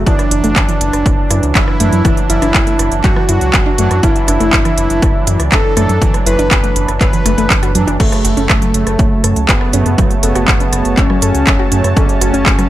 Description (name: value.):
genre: melodic techno.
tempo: 121 BPM.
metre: 4/4.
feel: straight.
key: unclear.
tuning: A4 = 440 Hz.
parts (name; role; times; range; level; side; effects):
analog synth brass; stabs; 0.0-12.7 s; C#3 to D4; -20 LUFS; right 4 dB; chorus, cassette tape, sidechain pumping, dub echo.
round analog bass; bass; 0.0-12.6 s; F#1 to F#2; -17 LUFS; equal; sidechain pumping.
fat analog lead; melody; 0.1-12.7 s; A3 to B4; -19 LUFS; equal; sidechain pumping, dub echo.
dark detuned synth bell; second line; 0.1-7.9, 11.0-12.7 s; C#4 to B4; -24 LUFS; left 3 dB; none.
soft round pluck; arpeggios; 0.1-12.6 s; E3 to A4; -21 LUFS; left 1 dB; chorus, sidechain pumping, dub echo.
electronic kick drum; drums; 0.1-12.6 s; none; -14 LUFS; equal; none.
techno drum kit; drums; 0.1-12.7 s; crash cymbal, handclaps, hi-hat, rim click; -17 LUFS; right 1 dB; none.
warm analog pad; sustained chords; 8.0-12.7 s; F#4 to A5; -24 LUFS; equal; chorus, vintage 12-bit sampler grit, sidechain pumping.
room: digital ambience.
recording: none.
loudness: -10 LUFS.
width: side -14 dB against mid.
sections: 0.0-12.7 A section.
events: none.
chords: 0.1 Dadd9/F#; 8.0 F#m.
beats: | 0.07 0.56 1.06 1.55 | 2.05 2.54 3.04 3.54 | 4.03 4.53 5.02 5.52 | 6.02 6.51 7.01 7.50 | 8.00 8.49 8.99 9.49 | 9.98 10.48 10.97 11.47 | 11.97 12.46.